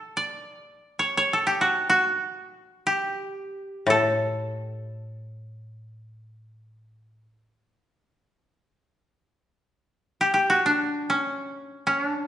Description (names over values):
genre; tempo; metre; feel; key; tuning
japanese traditional, Japanese chamber music; free time; none; none; unclear; A4 = 441 Hz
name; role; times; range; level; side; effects
koto; melody; 0.0-12.3 s; C#4 to D5; -22 LUFS; equal; none
koto; accompaniment; 3.9-7.2 s; A2; -26 LUFS; left 2 dB; none
room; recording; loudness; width
wet recital hall reverb, RT60 1.4 s; recorded in a church or concert hall, nothing above 10.7 kHz; -22 LUFS; side -11 dB against mid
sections
0.0-12.3 A section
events
none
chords
none